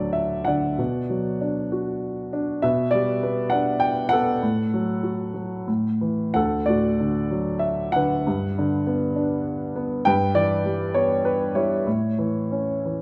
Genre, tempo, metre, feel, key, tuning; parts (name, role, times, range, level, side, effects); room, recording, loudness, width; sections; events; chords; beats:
classical, lyrical solo piano; 86-106 BPM; 3/4; rubato; D major; A4 = 440 Hz
warm grand piano; solo; 0.0-13.0 s; D2 to G5; -23 LUFS; equal
moderate recital hall reverb, RT60 1.3 s; dark, warm production; -23 LUFS; mono
0.0-13.0 A section
grand piano fill 12.8
0.0 D; 0.8 Bm; 2.6 G/B; 4.4 F#m/A; 5.7 A5; 6.3 D; 8.3 G; 10.1 Em/G; 11.9 A
0.15 | 0.79 1.41 2.03 | 2.63 3.24 3.83 | 4.43 5.04 5.68 | 6.35 7.00 7.63 | 8.26 8.86 9.45 | 10.05 10.64 11.24 | 11.86 12.51